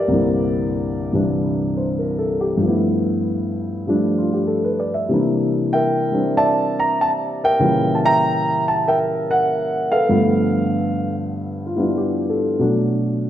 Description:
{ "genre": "solo jazz", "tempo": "96 BPM", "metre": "4/4", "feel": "swing 68% on 8ths", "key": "unclear", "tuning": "A4 = 440 Hz", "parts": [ { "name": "dark grand piano", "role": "solo", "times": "0.0-13.3 s", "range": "C2 to Bb5", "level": "-17 LUFS", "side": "equal", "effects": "none" } ], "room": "moderate scoring stage reverb, RT60 2.1 s", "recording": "recorded in a church or concert hall", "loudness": "-17 LUFS", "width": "side -11 dB against mid", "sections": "0.0-13.3 A section", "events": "none", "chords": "0.1 C9; 2.6 G13; 5.1 C9; 7.6 C#dim7; 10.1 G13; 12.6 Bm7", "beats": "| 0.11 0.73 1.36 1.98 | 2.61 3.23 3.86 4.49 | 5.11 5.74 6.36 6.98 | 7.61 8.23 8.86 9.48 | 10.11 10.73 11.36 11.98 | 12.61 13.23" }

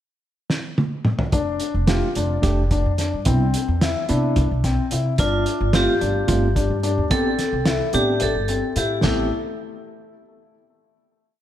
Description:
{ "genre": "progressive instrumental, band music in an uneven meter", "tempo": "218 BPM (eighths)", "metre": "7/8", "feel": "straight", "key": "A minor", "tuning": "A4 = 440 Hz", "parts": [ { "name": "cloth-damped thuddy drum kit", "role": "drums", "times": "0.5-9.2 s", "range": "hi-hat, kick drum, snare drum, splash cymbal, toms", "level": "-23 LUFS", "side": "right 1 dB", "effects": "none" }, { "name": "dark baby grand piano", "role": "arpeggios", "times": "1.3-9.3 s", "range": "A3 to F4", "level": "-25 LUFS", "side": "left 5 dB", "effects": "digital delay, slapback echo" }, { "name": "upright bass", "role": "bass", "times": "1.3-9.3 s", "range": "F1 to C3", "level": "-22 LUFS", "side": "equal", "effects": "none" }, { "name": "tine electric piano", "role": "accompaniment", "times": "1.9-9.3 s", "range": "A3 to G4", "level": "-27 LUFS", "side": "right 3 dB", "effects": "slapback echo" }, { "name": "vibraphone with hard mallets", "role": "second line", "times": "5.2-9.3 s", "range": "E4 to A4", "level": "-24 LUFS", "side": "equal", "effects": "slapback echo" } ], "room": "moderate lush hall reverb, RT60 2.1 s", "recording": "big arena sound", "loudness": "-18 LUFS", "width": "side -11 dB against mid", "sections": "0.0-1.3 pickup bar; 1.3-9.0 groove; 9.0-11.0 final chord", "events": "drum fill 0.5-1.3", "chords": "0.0 N.C.; 1.3 F6; 3.3 Cmaj7; 5.2 G7sus4; 7.1 Am7", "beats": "0.21 0.49 0.77 1.05 | 1.32 1.60 1.88 2.16 2.43 2.71 2.99 | 3.26 3.54 3.81 4.09 4.36 4.64 4.91 | 5.19 5.46 5.74 6.01 6.29 6.56 6.84 | 7.11 7.39 7.66 7.94 8.21 8.49 8.76 | 9.04" }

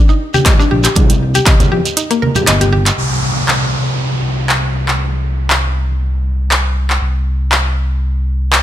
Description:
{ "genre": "afro house", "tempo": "119 BPM", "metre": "4/4", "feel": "swing 54% on 16ths", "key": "unclear", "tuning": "A4 = 439 Hz", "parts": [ { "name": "mallet-like synth pluck", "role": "arpeggios", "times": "0.0-2.8 s", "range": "Bb3 to Eb5", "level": "-17 LUFS", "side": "left 3 dB", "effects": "chorus, sidechain pumping, digital delay" }, { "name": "shekere", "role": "percussion", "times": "0.1-3.0 s", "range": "none", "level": "-22 LUFS", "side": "right 6 dB", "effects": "none" }, { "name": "congas", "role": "percussion", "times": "0.3-2.8 s", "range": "none", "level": "-18 LUFS", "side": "right 3 dB", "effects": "none" }, { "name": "electronic kick drum", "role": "drums", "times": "0.5-1.6 s", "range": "none", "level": "-10 LUFS", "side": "equal", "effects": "overdrive" }, { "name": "house drum kit", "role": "drums", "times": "0.5-8.6 s", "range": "handclaps, hi-hat", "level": "-15 LUFS", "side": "equal", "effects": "overdrive" }, { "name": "smooth synth bass", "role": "bass", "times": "0.7-8.6 s", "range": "G1 to F2", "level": "-15 LUFS", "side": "equal", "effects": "sidechain pumping" }, { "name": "downlifter", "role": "sound effects", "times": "3.0-7.0 s", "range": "none", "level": "-22 LUFS", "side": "equal", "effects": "none" } ], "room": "digital ambience", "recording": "none", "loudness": "-12 LUFS", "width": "side -12 dB against mid", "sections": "0.0-3.0 A section; 3.0-8.6 B section", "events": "kick drops out 2.0-3.0", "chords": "0.0 Eb; 3.0 N.C.", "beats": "0.46 | 0.96 1.47 1.97 2.48 | 2.98 3.48 3.99 4.49 | 5.00 5.50 6.01 6.51 | 7.01 7.52 8.02 8.53" }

